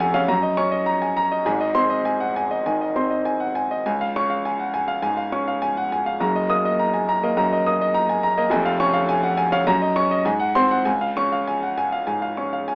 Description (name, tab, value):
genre	classical, virtuoso piano study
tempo	102 BPM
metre	4/4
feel	rubato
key	Db major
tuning	A4 = 441 Hz
part	warm concert grand piano	solo	0.0-12.8 s	F1 to Eb6	-22 LUFS	equal	none
room	light reverb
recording	AM radio sound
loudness	-22 LUFS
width	mono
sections	0.0-12.8 A section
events	none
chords	0.3 Ebm7/Gb; 1.5 Ab; 3.9 Db; 6.2 Ebm/Gb; 8.5 Db/F; 9.7 Ebm7/Gb; 10.2 Ab7; 10.9 Db